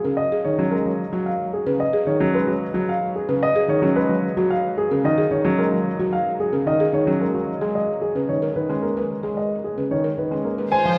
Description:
classical, minimalist pattern music; 111 BPM; 3/4; straight; A4 = 440 Hz
dark baby grand piano; melody; 0.0-10.9 s; G#4 to Ab5; -26 LUFS; equal
warm concert grand piano; accompaniment; 0.0-11.0 s; C#3 to A#3; -26 LUFS; equal
buzzing marimba with soft mallets; arpeggios; 0.0-10.9 s; C#4 to C5; -28 LUFS; equal
clear studio string section; sustained chords; 10.7-11.0 s; F4 to C5; -28 LUFS; equal
wet cathedral reverb, RT60 7.0 s; recorded in a church or concert hall; -22 LUFS; mono
0.0-10.7 A section
0.0 F#add9; 1.0 Bsus2 (rootless); 4.2 F#sus2; 7.5 G#madd9

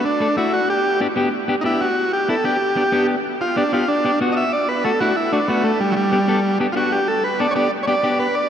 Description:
latin; 188 BPM; 4/4; straight; A4 = 440 Hz
combo organ; melody; 0.0-8.5 s; F#3 to E5; -18 LUFS; right 1 dB; diffuse ambient delay
clean electric guitar; accompaniment; 0.2-8.3 s; A3 to A4; -21 LUFS; left 2 dB
wet huge ambient reverb, RT60 8.0 s; dreamy mix soaked in reverb, nothing above 10.6 kHz; -16 LUFS; side -9 dB against mid
0.0-8.5 A section
transistor combo organ solo 0.0-8.5
0.0 D; 0.7 G; 4.5 D; 5.8 G

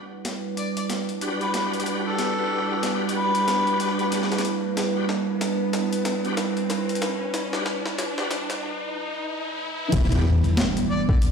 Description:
glitch hop; 93 BPM; 4/4; swing 60% on 16ths; E minor; A4 = 440 Hz
warbly tape-like pad; sustained chords; 0.0-11.3 s; E3 to B4; -27 LUFS; right 3 dB; chorus, built-in reverb, sidechain pumping
riser and impact; sound effects; 3.1-11.3 s; -31 LUFS; left 1 dB
boom bap sampler-style drum kit; drums; 0.2-11.3 s; crash cymbal, hi-hat, snare drum; -29 LUFS; left 2 dB; overdrive, high-pass filter on hats, high-pass filter on snare, high-pass filter on cymbals, high-pass filter on room
warm harmonica; melody; 0.6-4.1, 10.9-11.2 s; A4 to D5; -27 LUFS; left 2 dB; ping-pong delay
bright tonewheel organ; stabs; 1.2-10.2 s; D4 to B4; -29 LUFS; left 2 dB; overdrive, chorus vibrato, fast rotary speaker, vintage 12-bit sampler grit, sidechain pumping, ping-pong delay
wobble bass; bass; 9.9-10.4 s; E1 to E2; -20 LUFS; left 1 dB; chorus, overdrive
electronic kick drum; drums; 9.9-11.2 s; -20 LUFS; left 1 dB; overdrive
moderate studio reverb, RT60 0.6 s; played on a big sound system in a bare room, stone room reverb, high-pass filter; -22 LUFS; side -6 dB against mid
0.0-9.9 A section; 9.9-11.3 B section
build-up 0.0-9.9; drum fill 0.0-8.6; riser 3.1-9.9; drop 9.9-11.3; impact 9.9-11.3
0.0 Em7

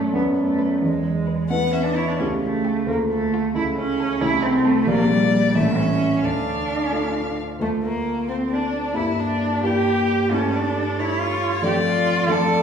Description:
quick classical-period movement for piano trio; 89 BPM (dotted quarters); 6/8; rubato; D minor; A4 = 440 Hz
warm violin; melody; 0.0-12.6 s; A3 to F#5; -27 LUFS; left 6 dB
warm cello; second line; 0.0-12.6 s; G3 to A4; -22 LUFS; right 2 dB
warm concert grand piano; accompaniment; 0.0-12.6 s; A1 to D5; -22 LUFS; equal
wet recital hall reverb, RT60 1.6 s; heard from further back in the room, studio reverb; -19 LUFS; side -7 dB against mid
0.0-7.6 A section; 7.6-12.6 B section
0.1 Bm7/F#; 0.8 E; 2.2 A7/C#; 2.9 Dm; 3.6 A/C#; 4.2 Am/C; 4.9 Gm/Bb; 5.5 A; 6.2 Dm; 9.0 Edim/G; 10.3 A7/G; 11.6 Dm/F

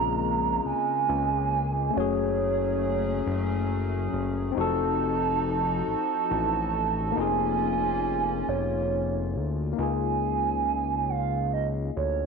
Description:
R&B; 46 BPM (dotted quarters); 6/8; straight; Db major; A4 = 440 Hz
hollow clarinet-like synth lead; melody; 0.0-12.3 s; Db5 to Bb5; -28 LUFS; right 10 dB; chorus, slapback echo
barky tine electric piano; accompaniment; 0.0-12.3 s; A3 to A4; -30 LUFS; left 16 dB; overdrive
hollow soft pad; sustained chords; 0.0-9.7 s; Db3 to A4; -34 LUFS; left 1 dB; chorus
fat analog bass; bass; 0.0-12.3 s; F1 to D2; -30 LUFS; left 1 dB
wet spring reverb, RT60 2.1 s; 1960s-style stereo with parts hard left and right; -24 LUFS; side -4 dB against mid
0.0-9.8 A section; 9.8-12.3 B section
0.0 Bbm9; 1.9 Gbmadd9; 4.5 F7b9; 7.2 Db69/F; 9.8 Db6

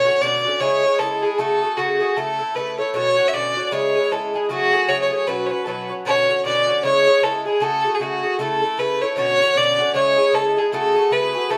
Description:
celtic folk; 154 BPM; 4/4; swing 60% on 8ths; B dorian; A4 = 440 Hz
warm fiddle; melody; 0.0-11.6 s; F#4 to E5; -20 LUFS; equal
Irish bouzouki; accompaniment; 0.0-11.6 s; B2 to A4; -25 LUFS; equal
wet studio reverb, RT60 0.6 s; band playing live in one room; -19 LUFS; mono
0.0-6.1 A section; 6.1-11.6 A section
0.0 Bmadd9; 0.6 C#m; 1.4 F#madd9; 2.2 A; 2.9 Bmadd9; 3.7 C#m; 4.5 F#madd9; 5.3 Bsus2; 6.1 Bmadd9; 6.8 C#m; 7.6 F#madd9; 8.4 A; 9.2 Bmadd9; 9.9 C#m; 10.7 F#madd9

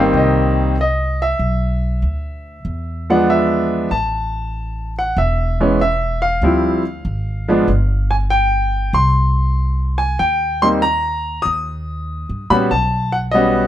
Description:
jazz; 96 BPM; 4/4; swing 68% on 8ths; A4 = 440 Hz
clear baby grand piano; melody; 0.0-13.7 s; Eb3 to Eb6; -16 LUFS; equal
upright bass; bass; 0.0-13.7 s; E1 to Bb2; -20 LUFS; equal
light reverb; -15 LUFS; side -12 dB against mid
0.0-13.7 A section
0.0 Abmaj9 (rootless); 1.4 Bmadd11; 2.7 E7b9; 3.9 A5; 6.4 Dm11; 7.7 N.C.; 8.9 Cm7; 11.4 Eb7alt

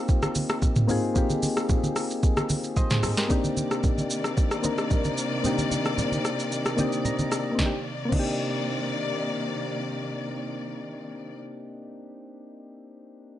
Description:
amapiano; 112 BPM; 4/4; straight; C minor; A4 = 442 Hz
soft electric-piano-like synth keys; accompaniment; 0.0-13.4 s; Bb3 to Bb5; -29 LUFS; left 2 dB; chorus
smooth R&B drum kit; drums; 0.1-8.3 s; crash cymbal, hi-hat, kick drum, rim click, shaker, snare drum, toms; -26 LUFS; equal; overdrive
congas; percussion; 0.2-8.3 s; -31 LUFS; right 2 dB
warm studio string section; sustained chords; 3.3-11.4 s; C3 to D5; -32 LUFS; left 1 dB; sidechain pumping
light reverb, digital ambience; nothing above 10.5 kHz; -24 LUFS; side -13 dB against mid
0.0-3.3 A section; 3.3-7.6 B section; 7.6-11.9 C section
kick muted 6.5-7.6; synth keys fill 6.5-7.6
0.0 F7sus4; 3.3 Cm9

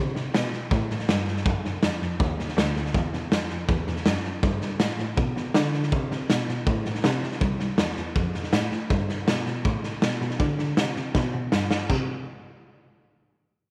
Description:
rockabilly; 161 BPM; 4/4; straight; A4 = 440 Hz
muted cello; bass; 0.0-12.1 s; C2 to D3; -30 LUFS; equal
raw garage drum kit; drums; 0.2-12.0 s; china cymbal, hi-hat, kick drum, snare drum; -27 LUFS; equal
light reverb; -26 LUFS; mono
0.0-10.4 A section; 10.4-11.9 B section; 11.9-13.4 C section
drum fill 11.2-11.9

